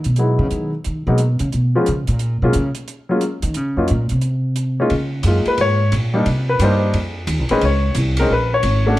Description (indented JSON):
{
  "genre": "jazz piano trio",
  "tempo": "177 BPM",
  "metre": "4/4",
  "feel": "swing 64% on 8ths",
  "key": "Db major",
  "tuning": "A4 = 440 Hz",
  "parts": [
    { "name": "upright bass", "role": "bass", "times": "0.0-9.0 s", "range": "Ab1 to D#3", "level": "-18 LUFS", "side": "equal", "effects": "none" },
    { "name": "compact cocktail drum kit", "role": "drums", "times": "0.0-9.0 s", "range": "hi-hat, ride cymbal", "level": "-30 LUFS", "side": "right 2 dB", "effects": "none" },
    { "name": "warm baby grand piano", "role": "melody", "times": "0.2-9.0 s", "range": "F3 to Db5", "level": "-18 LUFS", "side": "left 2 dB", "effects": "none" }
  ],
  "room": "light reverb",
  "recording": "dark, warm production",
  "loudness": "-16 LUFS",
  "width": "side -16 dB against mid",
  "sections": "0.0-4.9 A section; 4.9-9.0 A section",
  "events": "upright bass solo 0.0-4.9; grand piano solo 4.9-9.0",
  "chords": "0.0 Emaj7; 1.5 Db7; 2.2 Gb (rootless); 3.6 Eb7(no3) (rootless); 4.2 N.C.; 4.9 Db6; 6.3 Cm7; 6.9 F7; 7.6 Bbm9"
}